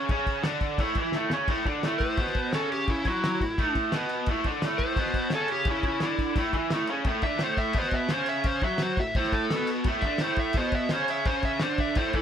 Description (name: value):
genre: garage rock duo or trio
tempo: 172 BPM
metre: 4/4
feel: straight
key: unclear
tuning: A4 = 440 Hz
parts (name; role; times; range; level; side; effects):
- raw garage guitar; riff; 0.0-12.2 s; A2 to F#4; -27 LUFS; right 1 dB; overdrive
- cloth-damped thuddy drum kit; drums; 0.1-12.2 s; crash cymbal, kick drum, snare drum; -30 LUFS; equal; none
- overdriven slide guitar; melody; 2.0-12.2 s; E4 to E5; -30 LUFS; left 1 dB; none
room: moderate studio reverb, RT60 0.6 s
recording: band playing live in one room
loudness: -24 LUFS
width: side -8 dB against mid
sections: 0.0-1.5 A section; 1.5-12.2 B section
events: drum fill 1.1-1.5; electric slide guitar solo 1.5-12.2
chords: 0.0 A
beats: | 0.10 0.45 0.80 1.15 | 1.50 1.84 2.19 2.54 | 2.89 3.24 3.59 3.94 | 4.29 4.63 4.98 5.33 | 5.68 6.03 6.38 6.72 | 7.07 7.42 7.77 8.12 | 8.47 8.82 9.17 9.52 | 9.87 10.22 10.57 10.92 | 11.27 11.62 11.97